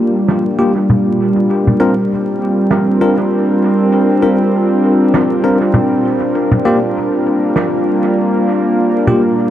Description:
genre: ambient dub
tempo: 99 BPM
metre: 4/4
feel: swing 55% on 16ths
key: G minor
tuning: A4 = 439 Hz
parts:
  - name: warbly tape-like pad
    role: sustained chords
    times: 0.0-9.5 s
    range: G3 to Bb4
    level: -12 LUFS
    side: equal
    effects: chorus, built-in reverb
  - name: jazz brush drum kit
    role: drums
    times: 0.3-9.2 s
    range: snare drum, toms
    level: -19 LUFS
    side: right 1 dB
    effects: low-pass filter on snare, low-pass filter on toms, low-pass filter on room, dub echo
  - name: bell-like tine electric piano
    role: stabs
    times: 0.6-9.2 s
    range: Bb3 to Bb4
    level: -19 LUFS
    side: left 1 dB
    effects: fast stereo tremolo, dub echo
room: moderate huge ambient reverb, RT60 8.6 s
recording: vinyl crackle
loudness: -11 LUFS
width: side -11 dB against mid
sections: 0.0-9.5 A section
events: none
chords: 0.0 Gm7

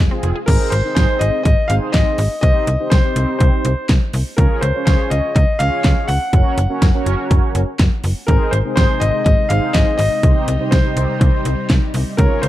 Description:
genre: synth-pop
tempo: 123 BPM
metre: 4/4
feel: straight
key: Ab major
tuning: A4 = 440 Hz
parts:
  - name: soft string machine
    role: sustained chords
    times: 0.0-0.5, 8.3-12.5 s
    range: C3 to F4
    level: -26 LUFS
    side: equal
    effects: ensemble chorus
  - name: slap-like FM bass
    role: bass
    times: 0.0-12.5 s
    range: F1 to Db2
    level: -18 LUFS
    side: equal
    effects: none
  - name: mellow synth brass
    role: accompaniment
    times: 0.1-12.4 s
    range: C4 to Db5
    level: -24 LUFS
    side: right 1 dB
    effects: chorus
  - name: pop drum kit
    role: drums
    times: 0.2-12.5 s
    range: crash cymbal, handclaps, hi-hat, kick drum, snare drum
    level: -16 LUFS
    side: equal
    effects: overdrive
  - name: warm concert grand piano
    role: melody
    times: 0.5-12.5 s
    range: Bb4 to Gb5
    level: -20 LUFS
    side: left 1 dB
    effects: none
room: digital ambience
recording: dark, warm production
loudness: -13 LUFS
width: side -14 dB against mid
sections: 0.5-12.5 A section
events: none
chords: 0.5 Ab; 2.4 Cm; 4.4 Db; 6.3 Gb; 8.3 Ab; 10.2 Cm

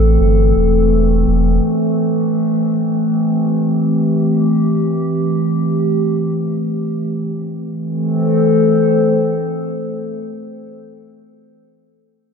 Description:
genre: ambient dub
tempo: free time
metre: none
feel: none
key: A minor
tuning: A4 = 440 Hz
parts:
  - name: warbly tape-like pad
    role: sustained chords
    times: 0.0-11.0 s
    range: E3 to C5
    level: -15 LUFS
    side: equal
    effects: chorus, built-in reverb
  - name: warm sub bass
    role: bass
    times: 0.0-1.6 s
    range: E1 to A1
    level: -14 LUFS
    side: equal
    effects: none
room: wet echo chamber reverb, RT60 1.6 s, digital ambience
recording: none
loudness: -14 LUFS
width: side -6 dB against mid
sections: 0.0-7.3 A section; 7.3-10.2 B section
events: none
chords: 0.0 Am

